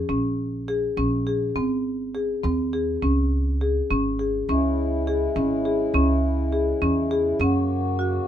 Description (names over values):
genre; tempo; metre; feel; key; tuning
contemporary instrumental, chamber music in an uneven meter; 205 BPM (eighths); 5/8; straight; C# dorian; A4 = 439 Hz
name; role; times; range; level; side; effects
marimba with medium mallets; arpeggios; 0.1-8.2 s; B#3 to G#4; -23 LUFS; left 1 dB; none
upright bass; bass; 0.1-8.2 s; G#1 to F#2; -26 LUFS; right 1 dB; none
pedal harmonium; sustained chords; 4.5-8.3 s; C#3 to F#4; -27 LUFS; left 1 dB; none
room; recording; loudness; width
light reverb; minimal, uncompressed stereo recording; -21 LUFS; side -10 dB against mid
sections
0.0-4.5 A section; 4.5-8.3 B section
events
none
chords
0.0 A#m; 1.6 G#; 3.0 C#5; 4.5 C#m; 7.4 F#